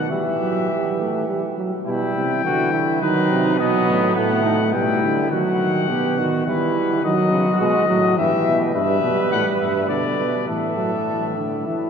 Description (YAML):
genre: classical, imitative canzona for brass ensemble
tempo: 104 BPM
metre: 3/4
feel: straight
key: E minor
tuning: A4 = 440 Hz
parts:
  - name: mellow trumpet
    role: melody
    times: 0.0-11.9 s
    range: B4 to G5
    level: -23 LUFS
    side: left 6 dB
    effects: none
  - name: warm flugelhorn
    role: second line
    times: 0.0-11.9 s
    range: B3 to B4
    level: -24 LUFS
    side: right 3 dB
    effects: none
  - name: warm trombone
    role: accompaniment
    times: 0.0-11.9 s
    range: D3 to B3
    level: -22 LUFS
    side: right 1 dB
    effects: none
  - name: warm euphonium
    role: bass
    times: 0.0-11.9 s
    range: G2 to E3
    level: -24 LUFS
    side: right 2 dB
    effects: none
room: wet cathedral reverb, RT60 6.7 s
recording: heard from further back in the room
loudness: -17 LUFS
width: side -6 dB against mid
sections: 0.0-1.9 A section; 1.9-5.3 B section; 5.3-11.9 A section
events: none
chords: 0.1 Em; 1.9 Em/B; 3.0 B/D#; 3.6 B; 4.7 Em/B; 5.3 B/D#; 6.5 Em; 7.0 D#dim; 8.2 Em/G; 9.9 Bm; 10.5 Asus4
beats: | 0.11 0.70 1.28 | 1.87 2.45 3.02 | 3.59 4.16 4.73 | 5.31 5.89 6.47 | 7.04 7.61 8.18 | 8.75 9.32 9.89 | 10.48 11.07 11.66